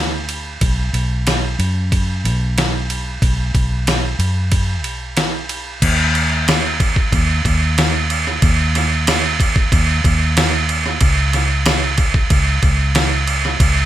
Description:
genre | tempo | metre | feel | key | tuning
rock, shoegaze and dream pop | 92 BPM | 4/4 | straight | unclear | A4 = 440 Hz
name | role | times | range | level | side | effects
vintage muted fingered electric bass | bass | 0.0-13.9 s | B1 to F#2 | -18 LUFS | equal | none
detuned 8-bit digital drum machine | drums | 0.3-13.8 s | crash cymbal, kick drum, ride cymbal, snare drum | -16 LUFS | right 1 dB | none
room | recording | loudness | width
little or no reverb | none | -14 LUFS | side -12 dB against mid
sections
0.0-5.8 A section; 5.8-13.9 B section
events
none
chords
none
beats
| 0.61 1.26 1.91 2.57 | 3.22 3.87 4.52 5.17 | 5.82 6.47 7.12 7.77 | 8.42 9.07 9.71 10.36 | 11.01 11.66 12.31 12.95 | 13.60

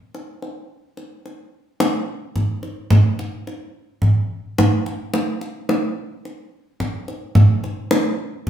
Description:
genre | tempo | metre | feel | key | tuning
gamelan | 54 BPM | 4/4 | straight | none | none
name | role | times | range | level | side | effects
kendang | percussion | 0.1-8.5 s | none | -18 LUFS | equal | none
room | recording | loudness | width
wet studio reverb, RT60 0.9 s | band playing live in one room | -18 LUFS | side -10 dB against mid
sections
0.7-8.5 A section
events
none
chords
none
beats
| 0.71 1.82 2.93 4.04 | 5.15 6.26 7.37 8.47

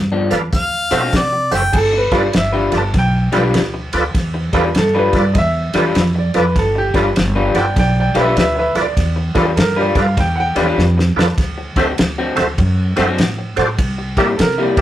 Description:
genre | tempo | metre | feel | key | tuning
electric blues shuffle | 100 BPM | 4/4 | swing 64% on 8ths | G mixolydian | A4 = 439 Hz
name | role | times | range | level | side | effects
upright bass | bass | 0.0-14.8 s | F#1 to C3 | -19 LUFS | equal | none
electric guitar through a small old amp | riff | 0.1-14.8 s | G2 to B4 | -19 LUFS | left 3 dB | none
tonewheel organ | accompaniment | 0.3-14.8 s | F4 to F5 | -19 LUFS | right 3 dB | slow rotary speaker, overdrive, chorus vibrato
warm soul drum kit | drums | 0.3-14.8 s | crash cymbal, hi-hat, kick drum, ride cymbal, snare drum | -20 LUFS | equal | none
bright harmonica | melody | 0.6-1.7 s | D5 to G5 | -18 LUFS | left 1 dB | overdrive
bright upright piano | second line | 1.7-14.8 s | G4 to A5 | -18 LUFS | right 1 dB | none
room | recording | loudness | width
moderate studio reverb, RT60 0.5 s | rough rehearsal-room recording, tube saturation | -13 LUFS | side -12 dB against mid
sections
0.0-1.7 A section; 1.7-14.8 B section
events
upright piano solo 1.7-14.8; drum fill 10.8-11.4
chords
0.0 G7; 0.5 D7; 1.7 G7; 11.4 D7; 13.8 C7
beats
0.53 1.13 | 1.74 2.34 2.94 3.55 | 4.15 4.75 5.36 5.96 | 6.56 7.17 7.77 8.37 | 8.97 9.58 10.18 10.78 | 11.38 11.99 12.59 13.19 | 13.79 14.39

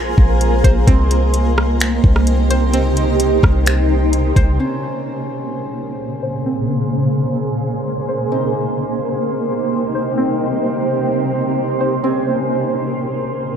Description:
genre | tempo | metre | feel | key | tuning
hip hop, atmospheric cloud-rap | 129 BPM | 4/4 | half-time | Bb dorian | A4 = 442 Hz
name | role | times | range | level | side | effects
granular cloud pad | sustained chords | 0.0-13.6 s | Bb2 to C5 | -18 LUFS | right 1 dB | built-in reverb, phaser, low-pass filter
string-like resonator pluck | arpeggios | 0.0-13.4 s | C4 to C5 | -26 LUFS | equal | chorus, phaser, low-pass filter, tape echo
warm 808-style bass | bass | 0.0-4.6 s | Bb1 to C2 | -15 LUFS | equal | none
hammered dulcimer | texture | 0.0-13.6 s | Db4 to C6 | -32 LUFS | left 1 dB | none
smooth R&B drum kit | drums | 0.2-4.5 s | finger snaps, hi-hat, kick drum, rim click | -15 LUFS | equal | none
room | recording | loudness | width
light reverb | none | -15 LUFS | side -8 dB against mid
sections
0.0-4.6 A section; 4.6-13.6 B section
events
none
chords
0.0 Bbm9; 0.9 Cm7; 4.6 Bbm9; 8.3 Cm7; 12.0 Bbm9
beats
0.41 | 0.88 1.34 1.80 2.27 | 2.73 3.20 3.67 4.13 | 4.60 5.06 5.53 5.99 | 6.46 6.92 7.39 7.85 | 8.32 8.78 9.25 9.71 | 10.18 10.64 11.11 11.57 | 12.04 12.50 12.97 13.43

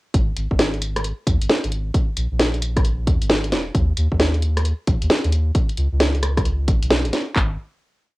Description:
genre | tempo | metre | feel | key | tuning
UK garage, two-step garage | 133 BPM | 4/4 | swing 64% on 16ths | G# minor | A4 = 440 Hz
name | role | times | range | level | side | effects
soft dub sub bass | bass | 0.1-7.6 s | D#1 to E2 | -22 LUFS | equal | none
house drum kit | drums | 0.1-7.5 s | handclaps, kick drum | -19 LUFS | equal | cassette tape
house drum kit | drums | 0.1-7.2 s | hi-hat, rim click, snare drum | -20 LUFS | equal | cassette tape
room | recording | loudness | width
light reverb | home recording on cassette | -18 LUFS | side -20 dB against mid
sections
0.1-7.4 drop; 7.4-8.2 final note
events
drop 0.1-7.4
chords
none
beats
| 0.14 0.59 1.04 1.49 | 1.94 2.39 2.85 3.30 | 3.75 4.20 4.65 5.10 | 5.55 6.00 6.46 6.91 | 7.36

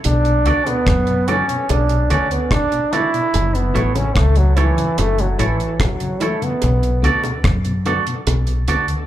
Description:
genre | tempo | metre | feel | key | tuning
roots reggae | 73 BPM | 4/4 | straight | unclear | A4 = 440 Hz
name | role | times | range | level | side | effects
deep reggae drum kit | drums | 0.0-9.1 s | hi-hat, kick drum, rim click | -22 LUFS | equal | none
warm trombone | melody | 0.1-7.2 s | E3 to E4 | -20 LUFS | right 1 dB | dub echo, slapback echo
deep dub fingered electric bass | bass | 0.1-8.9 s | F#1 to F#2 | -17 LUFS | equal | none
bongos | percussion | 0.1-8.5 s | none | -30 LUFS | right 5 dB | slapback echo
mellow tonewheel organ | accompaniment | 0.3-8.8 s | F#2 to B3 | -27 LUFS | left 3 dB | slow rotary speaker, dub echo, slapback echo
twangy electric guitar | accompaniment | 0.5-8.9 s | E4 to D5 | -24 LUFS | right 5 dB | dub echo, slapback echo
room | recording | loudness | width
light reverb | live gig heard through the venue's PA, club reverb | -15 LUFS | side -12 dB against mid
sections
0.0-9.1 A section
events
trombone solo 0.0-9.1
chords
0.0 Bm7; 3.3 F#m7; 6.6 Bm7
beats
| 0.05 0.87 1.69 2.51 | 3.33 4.16 4.98 5.80 | 6.62 7.44 8.26

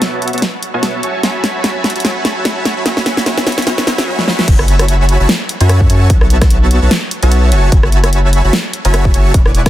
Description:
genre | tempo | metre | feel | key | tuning
future bass | 148 BPM | 4/4 | swing 56% on 16ths, half-time | F# minor | A4 = 440 Hz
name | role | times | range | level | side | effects
dense compressed supersaw | riff | 0.0-9.7 s | B3 to C#6 | -17 LUFS | right 1 dB | sidechain pumping, low-pass filter, digital delay
big-room dance drum kit | drums | 0.0-9.7 s | crash cymbal, hi-hat, rim click, snare drum | -16 LUFS | equal | none
saturated sub bass | bass | 4.5-9.7 s | E1 to F#2 | -11 LUFS | equal | sidechain pumping
electronic kick drum | drums | 4.5-9.7 s | none | -11 LUFS | equal | none
room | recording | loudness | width
light reverb | dense, heavily limited modern master | -10 LUFS | side -14 dB against mid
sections
0.0-4.5 A section; 4.5-9.7 B section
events
build-up 0.0-4.5; drum fill 0.0-4.1, 4.2-4.5; filter sweep on supersaw synth 0.0-4.5; drop 4.5-9.7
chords
0.0 B7sus4; 1.0 F#m11; 2.9 E69; 4.5 F#m11; 6.1 B7sus4; 7.5 F#m11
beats
0.02 0.42 0.83 | 1.24 1.64 2.05 2.45 | 2.86 3.26 3.67 4.07 | 4.48 4.88 5.29 5.70 | 6.10 6.50 6.91 7.32 | 7.72 8.13 8.53 8.94 | 9.34

